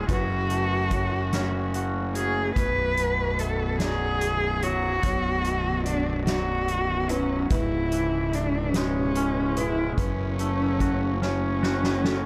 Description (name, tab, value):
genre	post-rock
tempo	48 BPM (dotted quarters)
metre	6/8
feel	straight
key	B dorian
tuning	A4 = 440 Hz
part	dark cello	melody	0.0-12.3 s	C#4 to B4	-29 LUFS	equal	digital delay
part	granular cloud pad	sustained chords	0.0-12.3 s	B2 to B4	-40 LUFS	equal	none
part	felt-muted upright piano	arpeggios	0.0-12.3 s	G#4 to E5	-41 LUFS	equal	digital delay
part	twangy electric guitar	arpeggios	0.0-12.3 s	B1 to F#4	-35 LUFS	equal	analog chorus, digital delay
part	fuzz fingered electric bass	bass	0.0-12.3 s	B0 to F#1	-31 LUFS	equal	overdrive
part	soft-mallet drum kit	drums	0.1-12.2 s	hi-hat, kick drum, snare drum	-32 LUFS	equal	none
room	light reverb, studio ambience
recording	none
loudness	-25 LUFS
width	mono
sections	0.0-12.3 A section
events	drum fill 11.2-12.3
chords	0.1 F#madd9; 2.6 Bmadd9; 7.5 C#m7; 10.0 F#m